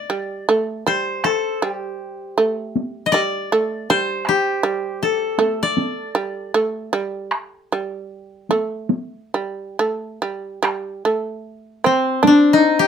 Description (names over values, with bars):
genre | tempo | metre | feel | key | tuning
japanese traditional, Japanese chamber music | 67-81 BPM | 4/4 | rubato | D in sen | A4 = 440 Hz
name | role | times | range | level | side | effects
koto | melody | 0.0-12.9 s | C4 to Eb5 | -18 LUFS | left 3 dB | none
shamisen | second line | 0.0-12.9 s | G3 to D4 | -21 LUFS | right 4 dB | none
taiko ensemble | percussion | 1.2-12.4 s | none | -22 LUFS | right 1 dB | none
room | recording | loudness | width
light reverb | none | -18 LUFS | side -8 dB against mid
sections
0.0-10.6 A section; 10.6-12.9 B section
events
none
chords
none